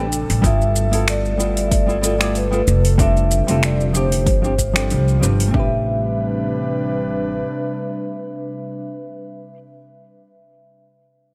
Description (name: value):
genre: sunset chillout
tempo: 94 BPM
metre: 4/4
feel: swing 55% on 16ths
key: A minor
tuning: A4 = 444 Hz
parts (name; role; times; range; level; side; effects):
- vibraphone with soft mallets; melody; 0.0-9.6 s; B4 to E5; -27 LUFS; equal; digital delay
- hollow-body jazz guitar; accompaniment; 0.0-9.6 s; F3 to D5; -27 LUFS; equal; delay
- airy breathy pad; sustained chords; 0.0-8.9 s; C3 to B4; -29 LUFS; equal; chorus
- upright bass; bass; 0.0-7.4 s; F1 to C2; -22 LUFS; equal; none
- deep house drum kit; drums; 0.1-5.5 s; finger snaps, hi-hat, shaker; -26 LUFS; equal; overdrive
- electronic kick drum; drums; 0.4-5.7 s; none; -22 LUFS; equal; overdrive
room: light reverb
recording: none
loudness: -18 LUFS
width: mono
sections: 0.0-5.5 A section; 5.5-8.1 B section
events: none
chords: 0.4 G13; 3.0 F69; 4.3 G7sus4; 5.5 Am11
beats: | 0.44 1.08 1.72 2.35 | 2.99 3.63 4.27 4.91 | 5.54 6.18 6.82 7.46